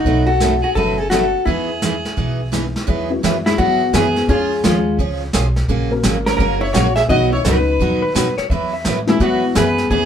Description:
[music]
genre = country, western swing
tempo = 171 BPM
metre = 4/4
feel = swing 65% on 8ths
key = E major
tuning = A4 = 442 Hz
[part]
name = vintage hollow-body jazz guitar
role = melody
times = 0.0-10.1 s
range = G#3 to E5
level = -17 LUFS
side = left 2 dB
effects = none
[part]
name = clear fiddle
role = second line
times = 0.0-10.1 s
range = C#4 to E5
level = -25 LUFS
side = right 2 dB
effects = none
[part]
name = honky-tonk upright piano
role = accompaniment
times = 0.0-0.3, 2.5-9.5 s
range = D#3 to A#4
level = -26 LUFS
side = left 4 dB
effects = none
[part]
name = upright bass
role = bass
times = 0.0-10.1 s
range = F#1 to A2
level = -22 LUFS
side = equal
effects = none
[part]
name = vintage brush drum kit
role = drums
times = 0.0-10.1 s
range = brushed snare drum, hi-hat, kick drum, snare drum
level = -22 LUFS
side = equal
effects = none
[part]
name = picked steel-string acoustic guitar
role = accompaniment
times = 0.1-10.1 s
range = B2 to B4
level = -21 LUFS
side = right 3 dB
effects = none
[part]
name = clean lap steel guitar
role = second line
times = 8.0-8.9 s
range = B4 to E5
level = -23 LUFS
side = left 2 dB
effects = none
[sound]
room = wet small room reverb, RT60 0.5 s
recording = band playing live in one room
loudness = -14 LUFS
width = side -8 dB against mid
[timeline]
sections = 0.0-2.9 A section; 2.9-10.1 B section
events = none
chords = 0.1 B7; 1.5 Emaj7; 2.9 Eadd9; 4.3 C#; 5.7 F#; 7.1 B; 8.5 Esus2

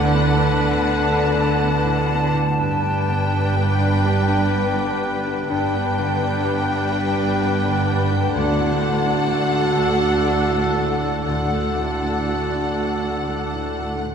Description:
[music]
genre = cinematic, emotional film score for orchestra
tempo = 62 BPM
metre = 3/4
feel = rubato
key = D major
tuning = A4 = 439 Hz
[part]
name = rich studio violin section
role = melody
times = 0.0-14.0 s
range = F#5 to G5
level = -28 LUFS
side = left 4 dB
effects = none
[part]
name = bright concert flute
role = second line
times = 0.0-13.9 s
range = F#5 to A5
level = -28 LUFS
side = left 1 dB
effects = none
[part]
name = clear oboe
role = second line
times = 0.0-13.9 s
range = A4 to B4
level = -29 LUFS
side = equal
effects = none
[part]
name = warm clarinet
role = second line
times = 0.0-13.9 s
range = D4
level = -31 LUFS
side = left 2 dB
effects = none
[part]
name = warm symphonic violin section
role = second line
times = 0.0-14.0 s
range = A4 to B4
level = -31 LUFS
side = left 3 dB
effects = none
[part]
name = bright baby grand piano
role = accompaniment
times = 0.0-14.1 s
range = D2 to A4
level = -27 LUFS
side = left 2 dB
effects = none
[part]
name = rich symphonic viola section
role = accompaniment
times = 0.0-14.0 s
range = D4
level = -30 LUFS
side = right 2 dB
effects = none
[part]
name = dark French horn section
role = sustained chords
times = 0.0-13.9 s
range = A3 to A4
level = -27 LUFS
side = equal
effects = none
[part]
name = concert harp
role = arpeggios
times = 0.0-14.1 s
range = G2 to A4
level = -31 LUFS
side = left 4 dB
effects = none
[part]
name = rich symphonic cello section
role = bass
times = 0.0-14.0 s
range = D2 to D3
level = -24 LUFS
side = right 3 dB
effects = none
[part]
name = rich symphonic double bass section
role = bass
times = 0.0-14.0 s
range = G1 to D2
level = -27 LUFS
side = right 3 dB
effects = none
[sound]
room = wet recital hall reverb, RT60 1.3 s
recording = recorded in a church or concert hall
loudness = -18 LUFS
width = side -7 dB against mid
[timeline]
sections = 0.0-14.1 A section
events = none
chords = 0.0 Bm7/D; 2.6 G; 8.4 D

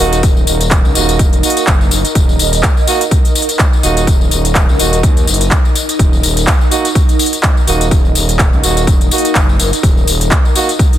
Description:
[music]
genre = bass house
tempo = 125 BPM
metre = 4/4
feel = swing 56% on 16ths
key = Eb minor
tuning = A4 = 440 Hz
[part]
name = mellow horn section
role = stabs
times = 0.0-10.7 s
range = Bb3 to Gb4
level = -19 LUFS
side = right 5 dB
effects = sidechain pumping, digital delay
[part]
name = growling FM bass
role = bass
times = 0.0-10.3 s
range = Eb1 to Eb2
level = -16 LUFS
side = equal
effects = overdrive, sidechain pumping
[part]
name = ethereal airy pad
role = texture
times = 0.0-11.0 s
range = Eb4 to Eb5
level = -20 LUFS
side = equal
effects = ensemble chorus, built-in reverb, phaser, sidechain pumping
[part]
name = big-room dance drum kit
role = drums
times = 0.1-11.0 s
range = handclaps, hi-hat, tambourine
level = -16 LUFS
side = left 2 dB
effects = overdrive
[part]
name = electronic kick drum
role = drums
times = 0.2-10.9 s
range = none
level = -11 LUFS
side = equal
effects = overdrive
[sound]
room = little or no reverb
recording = dense, heavily limited modern master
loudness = -9 LUFS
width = side -12 dB against mid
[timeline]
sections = 0.0-11.0 A section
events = none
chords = 0.0 Ebm

